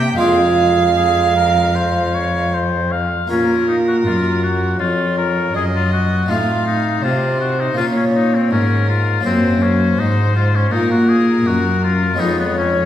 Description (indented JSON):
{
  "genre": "classical, baroque-style sonata movement with continuo",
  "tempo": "81 BPM",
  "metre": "4/4",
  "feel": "rubato",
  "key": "F minor, Bb minor from 3.3 s",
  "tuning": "A4 = 440 Hz",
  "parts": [
    { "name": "bright oboe", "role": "melody", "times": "0.0-12.9 s", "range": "Cb4 to F5", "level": "-21 LUFS", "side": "left 5 dB", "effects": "none" },
    { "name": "rich violin", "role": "second line", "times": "0.0-12.9 s", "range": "Bb4 to G5", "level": "-21 LUFS", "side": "right 4 dB", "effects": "none" },
    { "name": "harpsichord", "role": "accompaniment", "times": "0.0-12.9 s", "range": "F2 to C5", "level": "-19 LUFS", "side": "equal", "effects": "none" },
    { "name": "clear cello", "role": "bass", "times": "0.0-12.9 s", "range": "F2 to C3", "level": "-19 LUFS", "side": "equal", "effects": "none" }
  ],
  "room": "wet recital hall reverb, RT60 1.6 s",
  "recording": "heard from further back in the room",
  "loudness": "-14 LUFS",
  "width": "side -11 dB against mid",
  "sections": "0.0-3.3 A section; 3.3-12.9 A section",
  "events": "none",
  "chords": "0.2 Fm; 3.3 Bbm; 6.3 F7/A; 7.8 Bbm; 9.3 Gb; 12.2 Db7/F",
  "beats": "| 0.19 0.97 1.75 2.53 | 3.30 4.05 4.80 5.55 | 6.29 7.04 7.77 8.52 | 9.25 9.99 10.72 11.47 | 12.20"
}